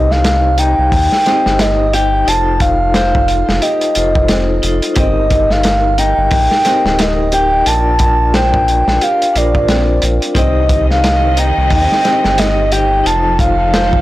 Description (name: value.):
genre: trip hop.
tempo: 89 BPM.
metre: 4/4.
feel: swing 59% on 16ths.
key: C dorian.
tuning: A4 = 441 Hz.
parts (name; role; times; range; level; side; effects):
pure breathy sine lead; melody; 0.0-14.0 s; D5 to A5; -14 LUFS; equal; chorus, tape echo.
vibraphone with medium hard mallets; accompaniment; 0.0-14.0 s; D4 to Eb5; -20 LUFS; left 2 dB; tremolo.
round analog bass; bass; 0.0-14.0 s; D1 to Eb2; -16 LUFS; equal; transformer saturation.
crunchy breakbeat drum kit; drums; 0.1-14.0 s; hi-hat, kick drum, snare drum; -17 LUFS; equal; none.
flamenco guitar; arpeggios; 0.6-14.0 s; C4 to C5; -24 LUFS; left 2 dB; vintage 12-bit sampler grit, tape echo.
rich chamber string section; sustained chords; 10.4-14.0 s; Eb3 to Eb5; -23 LUFS; equal; none.
room: light reverb, small room ambience.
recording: blown-out, overdriven recording, overdrive.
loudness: -10 LUFS.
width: side -16 dB against mid.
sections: 0.0-14.0 A section.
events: none.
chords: 0.0 Cm; 2.3 F7; 5.0 Ebmaj7/G; 7.7 Bb; 10.4 Cm; 13.1 F7.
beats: 0.25 0.92 1.60 | 2.27 2.95 3.62 4.29 | 4.97 5.64 6.32 6.99 | 7.67 8.34 9.01 9.69 | 10.36 11.04 11.71 12.38 | 13.06 13.73.